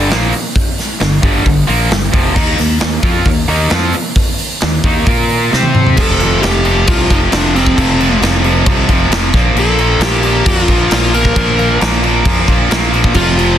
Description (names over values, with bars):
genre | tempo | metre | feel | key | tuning
hard rock | 133 BPM | 4/4 | straight | unclear | A4 = 440 Hz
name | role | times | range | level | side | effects
overdriven electric guitar | riff | 0.0-13.6 s | F2 to C5 | -14 LUFS | right 1 dB | none
fuzz fingered electric bass | bass | 0.0-13.6 s | F1 to C3 | -16 LUFS | equal | overdrive
big rock drum kit | drums | 0.1-13.5 s | crash cymbal, hi-hat, kick drum, snare drum, toms | -14 LUFS | equal | none
dark smooth lead guitar | melody | 6.0-13.6 s | C4 to Bb4 | -16 LUFS | left 1 dB | overdrive, slapback echo
room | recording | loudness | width
little or no reverb | dense, heavily limited modern master | -10 LUFS | side -10 dB against mid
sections
0.0-6.0 A section; 6.0-13.6 B section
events
drum fill 5.5-6.0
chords
0.0 Gm; 2.4 Eb5; 5.1 Bb5; 5.5 C5; 6.0 F5; 9.3 Bb5